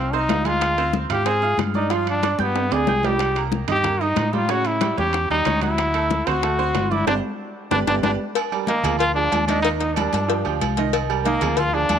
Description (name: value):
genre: latin, salsa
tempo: 186 BPM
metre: 4/4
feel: straight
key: C minor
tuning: A4 = 439 Hz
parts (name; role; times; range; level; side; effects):
- brilliant trombone; melody; 0.0-12.0 s; Bb3 to Ab4; -22 LUFS; left 1 dB; none
- bright upright piano; accompaniment; 0.0-12.0 s; C#3 to G6; -26 LUFS; right 11 dB; none
- fingered electric bass; bass; 0.0-12.0 s; G1 to A2; -26 LUFS; left 1 dB; none
- bongos and cowbell; percussion; 0.1-12.0 s; none; -28 LUFS; left 14 dB; none
- congas; percussion; 0.1-12.0 s; none; -28 LUFS; left 3 dB; none
- timbales and agogo bells; percussion; 0.3-12.0 s; none; -29 LUFS; right 10 dB; none
room: light reverb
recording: 1960s-style stereo with parts hard left and right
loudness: -18 LUFS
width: side -8 dB against mid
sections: 0.0-8.4 A section; 8.4-12.0 B section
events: drum fill 2.6-3.2, 7.1-8.4; band accent 7.1-8.4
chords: 0.0 F5; 0.6 Dm7b5; 1.9 G5; 3.2 Cm7; 4.5 A7; 5.8 D7; 7.1 Gsus4; 7.7 G; 8.4 Ebmaj9; 9.0 Ddim; 9.6 Eb; 10.3 G5; 10.9 Cm7